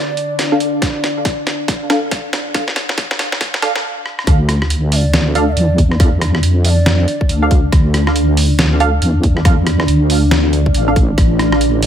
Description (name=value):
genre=deep dubstep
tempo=139 BPM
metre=4/4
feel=swing 61% on 16ths, half-time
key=D minor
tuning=A4 = 440 Hz
part: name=breathy mellow ney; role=melody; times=0.0-0.4, 4.9-7.3, 11.8-11.9 s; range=D5 to E5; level=-25 LUFS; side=right 2 dB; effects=dub echo
part: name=deep dark ambient pad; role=sustained chords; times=0.0-11.9 s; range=D4 to D5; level=-21 LUFS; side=left 1 dB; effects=chorus, built-in reverb
part: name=trip hop sampler-style drum kit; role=drums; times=0.2-11.9 s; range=hi-hat, rim click, snare drum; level=-19 LUFS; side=equal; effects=high-pass filter on hats, high-pass filter on snare
part: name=filtered dub chord stab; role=stabs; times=0.5-10.9 s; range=D4 to F5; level=-20 LUFS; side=right 2 dB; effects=lush chorus, dub echo
part: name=electronic kick drum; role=drums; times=0.8-11.3 s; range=none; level=-14 LUFS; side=equal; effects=none
part: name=deep soft wobble bass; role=bass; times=4.3-11.9 s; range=A1 to F2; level=-14 LUFS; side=equal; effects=chorus
room=light reverb, digital ambience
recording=high-pass filter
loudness=-12 LUFS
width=side -9 dB against mid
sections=0.0-4.3 A section; 4.3-11.9 B section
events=build-up 0.0-4.3; drum fill 0.0-3.8, 4.1; filter sweep on synth stab 0.0-4.3; filter sweep 0.0-4.3; stop 3.8-4.3; drop 4.3-11.9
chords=0.0 N.C.; 4.3 Dm; 11.2 N.C.